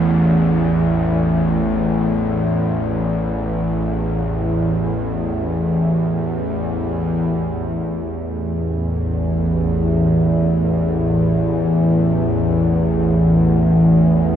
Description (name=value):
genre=ambient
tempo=free time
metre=none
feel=none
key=unclear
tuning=A4 = 440 Hz
part: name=bowed-like drone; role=solo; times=0.0-14.4 s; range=A1 to E2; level=-16 LUFS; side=equal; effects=built-in reverb
room=wet cathedral reverb, RT60 6.0 s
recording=nothing above 11.0 kHz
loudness=-16 LUFS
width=side -9 dB against mid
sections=0.0-7.3 A section; 7.3-14.4 B section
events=none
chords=0.0 A5